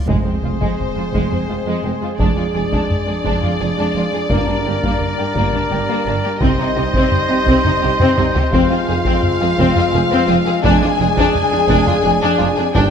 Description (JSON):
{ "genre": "cinematic, epic orchestral film score", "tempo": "57 BPM (dotted quarters)", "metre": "6/8", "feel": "straight", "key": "unclear", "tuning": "A4 = 440 Hz", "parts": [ { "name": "reverse cymbal and sub drop", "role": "sound effects", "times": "0.0-2.2 s", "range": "none", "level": "-29 LUFS", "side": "equal", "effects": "none" }, { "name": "rich symphonic violin section", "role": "melody", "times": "0.1-12.9 s", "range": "C5 to Ab5", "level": "-23 LUFS", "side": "left 5 dB", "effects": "none" }, { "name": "warm symphonic violin section", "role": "second line", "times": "0.1-12.9 s", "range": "Ab3 to Ab4", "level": "-22 LUFS", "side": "left 5 dB", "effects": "none" }, { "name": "rich symphonic viola section", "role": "accompaniment", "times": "0.1-12.9 s", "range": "Ab3 to D4", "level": "-24 LUFS", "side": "right 3 dB", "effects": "none" }, { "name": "dark French horn section", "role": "sustained chords", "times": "0.1-12.9 s", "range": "G3 to F4", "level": "-23 LUFS", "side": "left 3 dB", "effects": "none" }, { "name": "mellow trumpet", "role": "stabs", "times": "0.1-12.9 s", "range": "G4 to C5", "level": "-23 LUFS", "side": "right 1 dB", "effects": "none" }, { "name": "rich symphonic double bass section", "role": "bass", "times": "0.1-12.8 s", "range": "F1 to C2", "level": "-23 LUFS", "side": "right 4 dB", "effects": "none" }, { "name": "warm symphonic cello section", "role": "bass", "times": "0.1-12.8 s", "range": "F2 to C3", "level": "-23 LUFS", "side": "right 4 dB", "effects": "none" }, { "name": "taiko ensemble", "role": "drums", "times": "0.1-12.9 s", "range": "none", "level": "-21 LUFS", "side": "equal", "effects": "none" }, { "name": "timpani", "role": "percussion", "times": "4.3-5.3 s", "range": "G2", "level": "-27 LUFS", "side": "equal", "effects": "none" } ], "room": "moderate concert hall reverb, RT60 2.1 s", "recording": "none", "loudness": "-14 LUFS", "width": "side -7 dB against mid", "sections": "0.1-12.9 A section", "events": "impact 0.1-2.2; drum fill 8.0-8.5", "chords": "0.1 Fm; 2.2 Ddim/F; 4.3 Gm; 6.4 Cm; 8.5 Fm; 10.6 Ddim/F" }